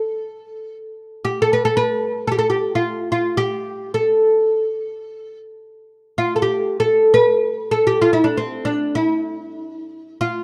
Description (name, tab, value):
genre	Turkish makam ensemble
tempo	free time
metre	none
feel	none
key	unclear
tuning	A4 = 439 Hz
part	oud	solo	0.0-10.4 s	C4 to B4-30c	-20 LUFS	equal	none
room	light reverb, studio reverb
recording	dry, close 1970s-style studio recording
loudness	-19 LUFS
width	mono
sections	0.0-10.4 A section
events	none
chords	none